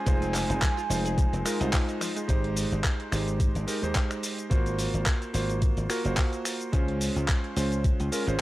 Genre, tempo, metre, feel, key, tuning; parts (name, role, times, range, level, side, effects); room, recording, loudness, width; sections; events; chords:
nu-disco, nu disco; 108 BPM; 4/4; swing 55% on 16ths; Ab major; A4 = 441 Hz
soft octave-layered synth lead; melody; 0.0-2.0 s; Ab5; -34 LUFS; right 1 dB; chorus, phaser, tape echo
warm electric grand piano; accompaniment; 0.0-8.4 s; Ab3 to C5; -30 LUFS; right 1 dB; tape echo
analog pluck; arpeggios; 0.1-2.2 s; F3 to Ab4; -41 LUFS; right 1 dB
dry thumbed slap bass; bass; 0.1-8.4 s; F1 to Eb2; -29 LUFS; equal; sidechain pumping
dusty soul sampler-style drum kit; drums; 0.1-8.4 s; cabasa, finger snaps, handclaps, hi-hat; -32 LUFS; equal; overdrive
electronic kick drum; drums; 0.1-8.0 s; -25 LUFS; equal
little or no reverb; dry, gritty hardware recording; -24 LUFS; side -17 dB against mid
0.0-2.3 A section; 2.3-8.4 B section
drop 0.0-2.3
0.1 Fm7; 2.3 Abmaj7; 4.5 Ab13; 6.7 Dbmaj7